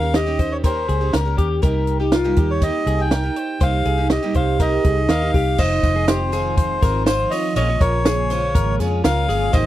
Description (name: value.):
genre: jangly indie pop.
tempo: 121 BPM.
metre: 4/4.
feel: straight.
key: F minor.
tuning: A4 = 445 Hz.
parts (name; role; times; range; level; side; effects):
melodica; melody; 0.0-9.7 s; Bb4 to G5; -23 LUFS; equal; none.
picked twelve-string acoustic guitar; accompaniment; 0.0-9.7 s; Bb2 to Db5; -26 LUFS; right 6 dB; none.
twelve-string electric guitar; arpeggios; 0.0-9.7 s; F4 to Db5; -25 LUFS; left 6 dB; slapback echo.
vintage muted fingered electric bass; bass; 0.0-9.7 s; F1 to F2; -22 LUFS; equal; none.
compact cocktail drum kit; drums; 0.1-9.7 s; crash cymbal, hi-hat, kick drum, snare drum; -19 LUFS; right 1 dB; none.
hollow soft pad; sustained chords; 5.6-9.7 s; C3 to F4; -29 LUFS; equal; ensemble chorus.
tambourine; percussion; 5.6-9.7 s; none; -40 LUFS; right 16 dB; none.
room: little or no reverb.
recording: dry, close 1970s-style studio recording.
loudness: -16 LUFS.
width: side -14 dB against mid.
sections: 0.0-5.6 A section; 5.6-9.7 B section.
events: none.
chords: 0.0 Eb7; 1.6 Cm7; 5.6 Fm7; 7.6 Bbm7.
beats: 0.14 0.64 1.14 | 1.63 2.13 2.62 3.12 | 3.61 4.11 4.60 5.09 | 5.59 6.08 6.58 7.07 | 7.56 8.06 8.55 9.04 | 9.54.